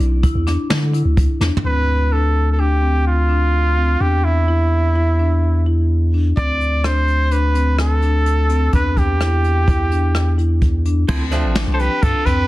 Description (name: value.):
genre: progressive instrumental, band music in an uneven meter.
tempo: 127 BPM.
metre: 5/4.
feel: straight.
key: D dorian.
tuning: A4 = 440 Hz.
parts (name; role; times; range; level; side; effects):
marimba with medium mallets; arpeggios; 0.0-12.5 s; C4 to E4; -24 LUFS; left 3 dB; plate reverb.
punchy sub bass; bass; 0.0-12.5 s; A1 to D3; -16 LUFS; equal; none.
jazz brush drum kit; drums; 0.0-1.7, 6.4-12.4 s; crash cymbal, hi-hat, kick drum, rim click, snare drum, toms; -19 LUFS; equal; soft clipping on snare.
clear trumpet; melody; 1.7-12.5 s; E4 to D5; -20 LUFS; right 2 dB; plate reverb.
archtop guitar, miked and amplified; accompaniment; 11.1-11.9 s; F3 to E4; -25 LUFS; right 3 dB; plate reverb.
clean electric guitar; second line; 11.7-12.5 s; F4 to A4; -26 LUFS; left 4 dB; plate reverb.
room: moderate studio reverb, RT60 0.6 s.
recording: dense, heavily limited modern master.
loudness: -14 LUFS.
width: side -17 dB against mid.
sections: 0.0-1.6 A section; 1.6-11.1 B section; 11.1-12.5 C section.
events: drum fill 1.4.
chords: 0.0 E5; 1.6 Dm7; 4.0 E7(no3); 6.4 D5; 8.7 Em7; 11.1 Dm7.